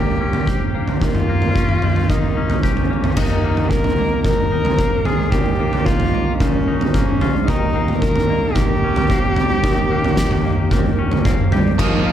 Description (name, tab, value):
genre	post-rock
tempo	111 BPM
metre	4/4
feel	straight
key	unclear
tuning	A4 = 439 Hz
part	muted cello	melody	0.0-12.1 s	F3 to Bb4	-22 LUFS	left 1 dB	tape echo
part	pedal steel guitar	sustained chords	0.0-12.1 s	Bb4 to Eb6	-33 LUFS	left 3 dB	none
part	twangy electric guitar	arpeggios	0.0-12.1 s	Eb3 to G4	-29 LUFS	left 4 dB	tape echo
part	vibraphone with medium hard mallets	arpeggios	0.0-12.1 s	Bb4 to Eb5	-30 LUFS	right 2 dB	tape echo
part	modern bright fingered electric bass	bass	0.0-12.1 s	Eb2	-24 LUFS	equal	none
part	oversized low-tuned drum kit	drums	0.3-11.9 s	crash cymbal, kick drum, snare drum, toms	-17 LUFS	right 1 dB	none
part	distorted electric guitar	riff	11.8-12.1 s	Eb3 to Eb4	-20 LUFS	right 5 dB	distortion
room	light reverb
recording	none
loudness	-15 LUFS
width	side -10 dB against mid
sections	0.0-3.2 A section; 3.2-11.8 B section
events	none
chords	0.0 Eb7; 3.2 Ebsus2; 7.5 Eb7